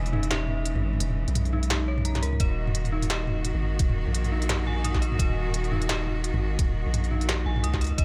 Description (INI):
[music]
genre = half-time drum and bass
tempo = 172 BPM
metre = 4/4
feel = swing 58% on 16ths, half-time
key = Eb phrygian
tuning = A4 = 440 Hz
[part]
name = bright symphonic cello section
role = sustained chords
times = 0.0-8.0 s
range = C#3 to Gb4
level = -37 LUFS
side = equal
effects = sidechain pumping
[part]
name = dark detuned synth bell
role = arpeggios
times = 0.0-8.0 s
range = Eb4 to Eb6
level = -37 LUFS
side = equal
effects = chorus, tremolo, delay
[part]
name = long sustained 808-style bass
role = bass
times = 0.0-8.0 s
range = Eb1 to C#2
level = -29 LUFS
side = equal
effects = none
[part]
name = industrial drum kit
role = drums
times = 0.1-8.0 s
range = hi-hat, snare drum, toms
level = -32 LUFS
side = equal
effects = studio reverb
[part]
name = electronic kick drum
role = drums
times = 2.4-8.0 s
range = none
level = -27 LUFS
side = equal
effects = studio reverb
[sound]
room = little or no reverb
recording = none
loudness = -26 LUFS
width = mono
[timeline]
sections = 0.0-8.0 A section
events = kick drops out 1.0-2.4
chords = 0.0 E6; 2.4 Ebm